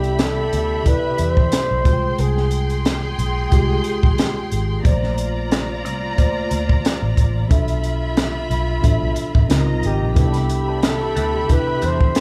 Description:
lush 1970s-style soul; 90 BPM; 4/4; swing 54% on 16ths; C major; A4 = 439 Hz
breathy flugelhorn; melody; 0.0-2.9, 9.9-12.2 s; G4 to C5; -25 LUFS; equal
warm studio string section; second line; 0.0-12.2 s; F4 to C6; -29 LUFS; equal
tine electric piano; accompaniment; 0.0-12.2 s; B2 to G5; -28 LUFS; equal
vintage muted fingered electric bass; bass; 0.0-12.1 s; Ab1 to E2; -24 LUFS; equal
compact cocktail drum kit; drums; 0.0-12.2 s; hi-hat, kick drum, snare drum; -21 LUFS; equal
electric guitar through a small old amp; riff; 10.2-12.2 s; A3 to B4; -36 LUFS; equal; wah, spring reverb
moderate large studio reverb, RT60 1.3 s; band playing live in one room; -19 LUFS; mono
0.0-12.2 A section
0.0 Cmaj13; 1.9 Fmadd9; 4.8 Bbmaj9; 7.5 Dm69; 9.5 Dbmaj13; 10.2 Cmaj13

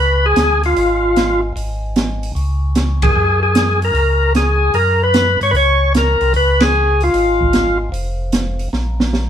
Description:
soul jazz organ trio; 151 BPM; 4/4; swing 67% on 8ths; Db mixolydian; A4 = 440 Hz
percussive tonewheel organ; melody; 0.0-7.8 s; F4 to Db5; -14 LUFS; left 1 dB; slow rotary speaker, overdrive
tonewheel organ; bass; 0.0-9.3 s; F1 to G2; -18 LUFS; equal; stopped rotary speaker
open jazz drum kit; drums; 0.4-9.3 s; hi-hat, kick drum, ride cymbal, snare drum; -19 LUFS; right 2 dB
moderate stone room reverb, RT60 1.0 s; band playing live in one room; -13 LUFS; side -9 dB against mid
0.0-9.3 A section
band accent 3.0, 6.5; drum fill 8.7-9.3
0.0 Db; 1.6 N.C.; 2.4 Db5; 3.2 Gbadd9; 6.3 Db; 7.9 N.C.

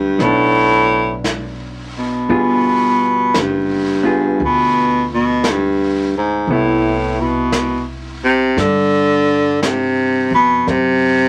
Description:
jazz ballad; 57 BPM; 4/4; swing 66% on 8ths; G major; A4 = 439 Hz
warm baritone saxophone; melody; 0.0-11.3 s; G2 to D3; -16 LUFS; equal
vintage hollow-body jazz guitar; accompaniment; 0.0-10.7 s; F#3 to Ab4; -24 LUFS; equal
upright bass; bass; 0.0-11.3 s; F#1 to G2; -28 LUFS; equal
jazz brush drum kit; drums; 0.2-11.3 s; brushed snare drum, hi-hat, snare drum; -28 LUFS; equal
light reverb; vinyl crackle; -16 LUFS; mono
0.0-11.3 A section
0.0 Gmaj7 (rootless); 2.3 G7b9; 6.5 Cmaj9; 10.7 F#(b5, no3)

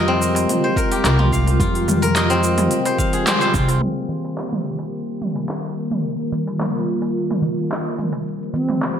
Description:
organic downtempo; 108 BPM; 4/4; straight; A4 = 440 Hz
airy breathy pad; sustained chords; 0.0-9.0 s; C3 to C5; -23 LUFS; equal; chorus, sidechain pumping
steel-string zither; arpeggios; 0.0-6.3 s; C4 to F5; -22 LUFS; left 2 dB; digital delay
upright bass; bass; 0.0-3.8 s; C2 to F2; -19 LUFS; equal; sidechain pumping
organic electronic drum kit; drums; 0.2-8.9 s; handclaps, hi-hat, shaker, toms; -24 LUFS; right 1 dB; overdrive
darbuka; percussion; 0.3-8.8 s; -29 LUFS; right 1 dB
electronic kick drum; drums; 0.8-3.7 s; -23 LUFS; equal; overdrive
mellow hollow bass bansuri; melody; 8.5-9.0 s; C4; -21 LUFS; right 2 dB
moderate lush hall reverb, RT60 1.9 s, small room ambience; low-pass filter; -17 LUFS; side -8 dB against mid
0.0-3.8 A section; 3.8-9.0 B section
band accent 3.3
0.0 Fmadd9; 3.8 Eb; 8.3 Fmadd9

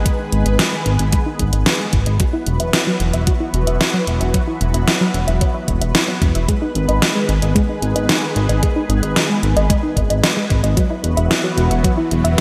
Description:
synthwave; 112 BPM; 4/4; straight; G# minor; A4 = 440 Hz
analog string pad; sustained chords; 0.0-12.4 s; D#3 to B4; -26 LUFS; equal; ensemble chorus, phaser, vintage 12-bit sampler grit, sidechain pumping
chorused synth bass; bass; 0.0-12.4 s; E1 to G#1; -20 LUFS; equal
analog pluck; arpeggios; 0.1-12.4 s; F#3 to E5; -25 LUFS; equal; chorus, phaser, delay
electronic kick drum; drums; 0.1-11.9 s; -21 LUFS; equal; overdrive
pop drum kit; drums; 0.1-12.4 s; hi-hat, snare drum; -22 LUFS; equal; overdrive
riser; sound effects; 12.0-12.4 s; -43 LUFS; equal
moderate lush hall reverb, RT60 1.9 s; bright 1980s-style digital production; -17 LUFS; mono
0.0-12.4 A section
filter sweep on synth arpeggio sound 0.0-12.4
0.0 G#m; 2.2 Esus2; 6.5 G#m; 10.8 Esus2

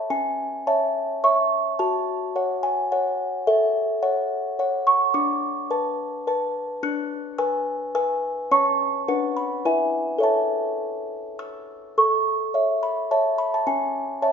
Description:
classical, lullaby for music box; 107 BPM; 3/4; straight; A major; A4 = 439 Hz
music box; solo; 0.0-14.3 s; C#4 to F#6; -21 LUFS; equal
moderate scoring stage reverb, RT60 1.5 s; recorded in a church or concert hall, nothing above 7.5 kHz; -21 LUFS; side -7 dB against mid
0.0-12.0 A section; 12.0-14.3 A section
0.1 A/C#; 1.8 F#m; 3.5 F#m/A; 5.1 Bm7/D; 6.8 E7/D; 8.5 A/C#; 9.1 Bm/D; 9.6 E; 10.2 A; 13.7 A/C#

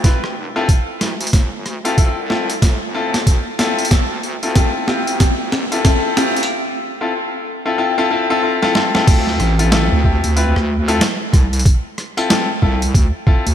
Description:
glitch hop; 93 BPM; 4/4; swing 61% on 16ths; D minor; A4 = 440 Hz
bright concert grand piano; stabs; 0.0-13.4 s; C4 to B4; -19 LUFS; left 2 dB; sidechain pumping, digital delay
wobble bass; bass; 0.0-13.5 s; F1 to D2; -20 LUFS; right 1 dB; chorus, overdrive, high-pass filter
boom bap sampler-style drum kit; drums; 0.0-13.5 s; crash cymbal, hi-hat, rim click, snare drum; -20 LUFS; equal; overdrive, gated reverb
electronic kick drum; drums; 0.0-13.4 s; -13 LUFS; equal; overdrive
moderate lush hall reverb, RT60 2.9 s; bright 1980s-style digital production; -14 LUFS; side -10 dB against mid
0.0-9.1 A section; 9.1-13.5 B section
build-up 0.0-9.1; drum fill 0.0-6.5, 8.6-9.1; drop 9.1-13.5
0.0 Dm9

